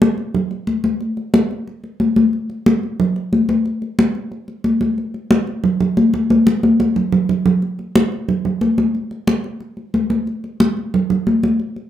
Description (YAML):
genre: jazz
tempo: 181 BPM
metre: 4/4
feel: straight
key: none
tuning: none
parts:
  - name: congas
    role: percussion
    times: 0.0-11.9 s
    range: none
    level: -15 LUFS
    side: equal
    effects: none
room: moderate studio reverb, RT60 0.6 s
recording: minimal, uncompressed stereo recording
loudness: -15 LUFS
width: side -11 dB against mid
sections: 0.0-7.6 A section; 7.6-11.9 A section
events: drum fill 6.3-7.6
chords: none